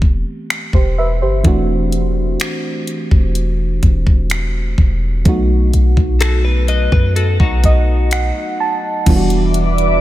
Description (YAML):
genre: contemporary R&B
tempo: 63 BPM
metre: 4/4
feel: straight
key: unclear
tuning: A4 = 437 Hz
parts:
  - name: mellow FM electric piano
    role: accompaniment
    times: 0.0-10.0 s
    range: E3 to A5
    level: -20 LUFS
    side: right 2 dB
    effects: chorus
  - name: warm 808-style bass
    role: bass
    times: 0.0-10.0 s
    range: E1 to F#2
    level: -15 LUFS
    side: equal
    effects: none
  - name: smooth R&B drum kit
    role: drums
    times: 0.0-10.0 s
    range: crash cymbal, finger snaps, hi-hat, kick drum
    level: -16 LUFS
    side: equal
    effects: none
  - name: direct-recorded clean electric guitar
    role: arpeggios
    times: 6.2-8.8 s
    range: D#4 to D#5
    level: -22 LUFS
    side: left 5 dB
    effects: analog chorus, tape echo
  - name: ethereal airy pad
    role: sustained chords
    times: 9.4-10.0 s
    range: B4 to D6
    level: -17 LUFS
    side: right 1 dB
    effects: ensemble chorus, built-in reverb, phaser
room: light reverb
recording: none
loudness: -13 LUFS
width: side -15 dB against mid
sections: 0.0-9.1 A section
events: FM electric piano fill 7.2-9.1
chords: 0.0 Am7/E; 1.4 D7/E; 5.3 B7; 9.1 Em7